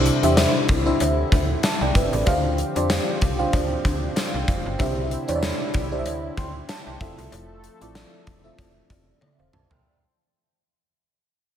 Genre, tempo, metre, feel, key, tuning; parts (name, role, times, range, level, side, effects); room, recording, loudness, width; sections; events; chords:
1980s-style pop; 95 BPM; 4/4; swing 55% on 16ths; C major; A4 = 440 Hz
FM electric piano with soft pad layer; accompaniment; 0.0-10.0 s; C3 to C6; -24 LUFS; equal; chorus, phaser, slapback echo
warm analog pad; sustained chords; 0.0-9.8 s; D3 to A4; -32 LUFS; left 1 dB; chorus
slap-like FM bass; bass; 0.0-9.8 s; E1 to F2; -26 LUFS; equal
gated 80s drum kit; drums; 0.1-9.8 s; hi-hat, kick drum, snare drum, tambourine, toms; -24 LUFS; equal
cowbell; percussion; 0.4-9.4 s; -39 LUFS; left 2 dB
moderate lush hall reverb, RT60 2.6 s; big arena sound; -20 LUFS; side -10 dB against mid
0.0-9.8 A section
fade-out 0.0-9.8; drum fill 9.2-9.8
0.0 C6; 2.3 G7sus4; 4.8 Cadd9; 7.0 Fmaj7